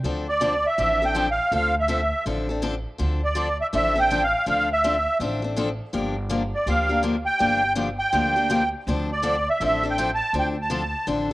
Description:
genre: acoustic string swing (jazz manouche)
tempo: 163 BPM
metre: 4/4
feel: swing 62% on 8ths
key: D minor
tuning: A4 = 440 Hz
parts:
  - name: picked steel-string acoustic guitar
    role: accompaniment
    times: 0.0-11.3 s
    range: D3 to A4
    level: -27 LUFS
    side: left 3 dB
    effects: none
  - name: upright bass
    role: bass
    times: 0.0-11.3 s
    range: G1 to D2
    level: -29 LUFS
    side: equal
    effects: none
  - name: musette accordion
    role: melody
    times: 0.3-11.1 s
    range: D5 to A5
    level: -22 LUFS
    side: right 1 dB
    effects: cassette tape
room: moderate spring reverb, RT60 1.8 s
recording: home recording on cassette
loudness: -20 LUFS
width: side -18 dB against mid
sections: 0.0-11.3 A section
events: none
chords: 0.0 Dm9; 5.9 Gm7; 8.9 Dm7

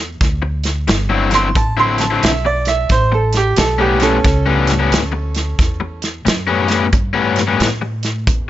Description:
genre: electric blues shuffle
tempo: 89 BPM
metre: 4/4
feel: swing 63% on 8ths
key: A mixolydian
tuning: A4 = 436 Hz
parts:
  - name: upright bass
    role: bass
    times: 0.0-8.5 s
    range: G1 to A2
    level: -19 LUFS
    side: equal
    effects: none
  - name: natural country drum kit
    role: drums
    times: 0.2-8.5 s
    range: hi-hat, kick drum, snare drum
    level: -18 LUFS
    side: equal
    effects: none
  - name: crunchy overdriven guitar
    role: riff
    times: 0.4-7.9 s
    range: A2 to E4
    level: -17 LUFS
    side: left 6 dB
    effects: none
  - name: bright upright piano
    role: second line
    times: 1.3-6.0 s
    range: C#4 to C6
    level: -18 LUFS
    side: right 4 dB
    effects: none
room: studio reverb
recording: nothing above 7.7 kHz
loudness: -13 LUFS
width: side -13 dB against mid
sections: 0.0-8.5 A section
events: upright piano solo 0.0-8.5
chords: 0.0 D9; 2.9 A9

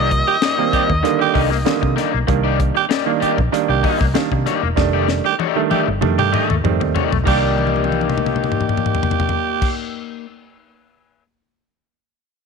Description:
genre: funk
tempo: 96 BPM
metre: 4/4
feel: straight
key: C dorian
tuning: A4 = 440 Hz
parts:
  - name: octave-fuzz lead guitar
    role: melody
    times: 0.0-1.9 s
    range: Eb5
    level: -21 LUFS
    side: left 1 dB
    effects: distortion
  - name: crunchy overdriven guitar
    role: accompaniment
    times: 0.0-10.3 s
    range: A3 to Eb5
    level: -22 LUFS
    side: left 14 dB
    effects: spring reverb
  - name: mellow clav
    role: stabs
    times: 0.0-9.7 s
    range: D3 to F4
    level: -21 LUFS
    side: right 12 dB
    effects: none
  - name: vintage muted fingered electric bass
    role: bass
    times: 0.0-9.7 s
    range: E1 to C3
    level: -21 LUFS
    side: equal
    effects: tube saturation
  - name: tight funk drum kit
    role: drums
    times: 0.1-11.2 s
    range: crash cymbal, hi-hat, kick drum, snare drum, toms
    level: -22 LUFS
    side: left 4 dB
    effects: none
  - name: growling tenor saxophone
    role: second line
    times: 0.3-9.7 s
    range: G4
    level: -22 LUFS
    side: right 12 dB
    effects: none
room: light reverb, small room ambience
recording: 1960s-style stereo with parts hard left and right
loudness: -15 LUFS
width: side -5 dB against mid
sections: 0.0-7.3 A section; 7.3-9.8 B section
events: drum fill 4.8-7.3, 7.6-9.6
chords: 0.0 Cm9; 4.8 F13; 7.3 Cm9

